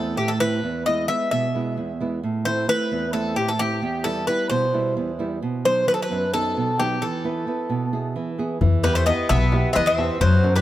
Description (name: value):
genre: greek folk, Greek bouzouki band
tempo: 263 BPM (eighths)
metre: 7/8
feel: straight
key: unclear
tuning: A4 = 440 Hz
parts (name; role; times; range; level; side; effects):
- Greek bouzouki; melody; 0.0-10.6 s; G4 to E5; -23 LUFS; left 2 dB; none
- nylon-string guitar; accompaniment; 0.0-10.6 s; E2 to B4; -25 LUFS; right 3 dB; none
- upright bass; bass; 8.6-10.6 s; B1 to F#2; -21 LUFS; left 1 dB; none
- darbuka; percussion; 8.6-10.5 s; none; -22 LUFS; left 3 dB; none
- Greek bouzouki; second line; 8.8-10.6 s; F#3 to C4; -26 LUFS; left 1 dB; none
room: light reverb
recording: none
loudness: -20 LUFS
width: side -14 dB against mid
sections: 0.0-8.6 A section; 8.6-10.6 B section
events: none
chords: 0.0 Am; 0.6 E; 2.2 Am; 3.8 Em; 5.4 B; 7.0 E; 8.6 Em